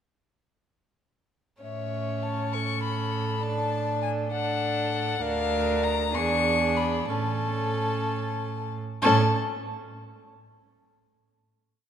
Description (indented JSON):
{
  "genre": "quick classical-period movement for string quartet",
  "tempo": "61-68 BPM (dotted quarters)",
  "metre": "6/8",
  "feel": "rubato",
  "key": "A major",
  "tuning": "A4 = 440 Hz",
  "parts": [
    { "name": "warm violin", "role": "melody", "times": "1.6-9.4 s", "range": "E5 to C#6", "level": "-30 LUFS", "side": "left 7 dB", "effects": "none" },
    { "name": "rich violin", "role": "second line", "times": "1.6-9.4 s", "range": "G#4 to C#5", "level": "-32 LUFS", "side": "left 4 dB", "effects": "none" },
    { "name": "warm viola", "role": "accompaniment", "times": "1.6-9.4 s", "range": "C#4 to D4", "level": "-30 LUFS", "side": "right 3 dB", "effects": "none" },
    { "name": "rich cello", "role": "bass", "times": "1.6-9.4 s", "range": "D2 to A2", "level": "-30 LUFS", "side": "right 4 dB", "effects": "none" }
  ],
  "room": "wet concert hall reverb, RT60 2.4 s",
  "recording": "none",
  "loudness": "-24 LUFS",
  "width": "side -8 dB against mid",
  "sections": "1.6-9.0 A section; 9.0-10.9 final chord",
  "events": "none",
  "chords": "1.6 A; 3.4 D/A; 5.2 Bb/D; 6.1 E7; 7.1 A",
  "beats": "| 1.61 2.53 | 3.43 4.32 | 5.22 6.14 | 7.08 8.05 | 9.02"
}